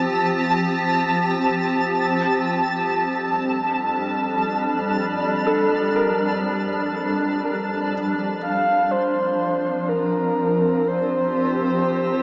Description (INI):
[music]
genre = ambient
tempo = free time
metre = none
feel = none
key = unclear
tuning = A4 = 440 Hz
[part]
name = granular cloud pad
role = sustained chords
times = 0.0-12.2 s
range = F2 to A5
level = -21 LUFS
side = equal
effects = built-in reverb
[part]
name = bowed-like drone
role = drone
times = 0.0-8.0 s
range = F3 to C4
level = -33 LUFS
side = equal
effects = none
[part]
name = twinkling granular texture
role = texture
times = 0.0-7.9 s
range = A5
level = -26 LUFS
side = equal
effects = built-in reverb
[part]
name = felt-muted upright piano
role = arpeggios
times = 5.5-8.4 s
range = A4 to Bb4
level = -26 LUFS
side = equal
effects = tape echo
[part]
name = breathy flute-like synth lead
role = melody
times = 8.4-12.2 s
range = Bb4 to F5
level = -20 LUFS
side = equal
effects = tremolo, wide subtle chorus, cassette tape
[sound]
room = wet huge ambient reverb, RT60 8.9 s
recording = small speaker sound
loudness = -19 LUFS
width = side -29 dB against mid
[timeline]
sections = 0.0-7.9 A section; 7.9-12.2 B section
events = none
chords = 0.0 Fadd9; 2.0 Gmadd9/F